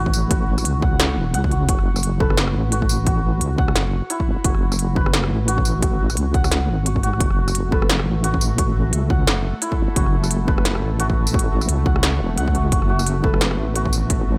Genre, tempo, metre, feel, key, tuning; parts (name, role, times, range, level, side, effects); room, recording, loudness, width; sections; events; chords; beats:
half-time drum and bass; 174 BPM; 4/4; swing 58% on 16ths, half-time; F# minor; A4 = 440 Hz
santur; arpeggios; 0.0-14.4 s; E4 to F#5; -29 LUFS; equal; tape echo
deep soft wobble bass; bass; 0.0-14.4 s; E1 to C#2; -23 LUFS; equal; chorus
electronic kick drum; drums; 0.1-14.2 s; -23 LUFS; equal; studio reverb
industrial drum kit; drums; 0.1-14.2 s; hi-hat, rim click, snare drum, tambourine; -25 LUFS; equal; studio reverb
breathy flute-like synth lead; melody; 2.2-2.4, 7.7-7.9, 13.2-13.4 s; A4; -34 LUFS; equal
pulsing gated texture; texture; 7.4-14.4 s; A3 to A4; -35 LUFS; equal; chorus, built-in reverb
digital ambience; -20 LUFS; mono
0.0-14.4 A section
0.0 F#m
| 0.31 0.65 1.00 1.34 | 1.69 2.03 2.38 2.72 | 3.07 3.41 3.76 4.10 | 4.45 4.79 5.14 5.48 | 5.83 6.17 6.51 6.86 | 7.21 7.55 7.89 8.24 | 8.58 8.93 9.27 9.62 | 9.96 10.31 10.65 11.00 | 11.34 11.69 12.03 12.38 | 12.72 13.07 13.41 13.76 | 14.10